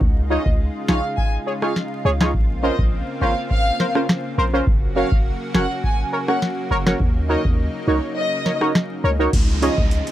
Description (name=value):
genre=dancehall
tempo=103 BPM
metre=4/4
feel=straight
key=Db major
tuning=A4 = 440 Hz
part: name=lush unison pad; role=sustained chords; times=0.0-10.1 s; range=Db3 to Gb4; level=-28 LUFS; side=left 1 dB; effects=chorus, sidechain pumping
part: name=warm 808-style bass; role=bass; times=0.0-10.0 s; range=F1 to Eb2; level=-22 LUFS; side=equal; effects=none
part: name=booming analog drum machine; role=drums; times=0.0-10.1 s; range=crash cymbal, hi-hat, kick drum, rim click, snare drum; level=-19 LUFS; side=equal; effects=none
part: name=dark studio violin section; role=melody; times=0.3-9.7 s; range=Db5 to Ab5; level=-26 LUFS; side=equal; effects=tape echo
part: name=synth brass stab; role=accompaniment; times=0.3-9.7 s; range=Db4 to Db5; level=-20 LUFS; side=right 1 dB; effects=chorus
part: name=downlifter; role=sound effects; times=9.3-10.1 s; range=none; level=-28 LUFS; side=right 3 dB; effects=none
room=little or no reverb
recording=vinyl crackle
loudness=-17 LUFS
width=side -13 dB against mid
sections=0.0-9.3 A section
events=kick muted 8.2-9.3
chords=0.0 Dbadd9; 2.3 Bbmadd9; 4.7 Gb; 7.0 Ebm7; 9.3 Dbadd9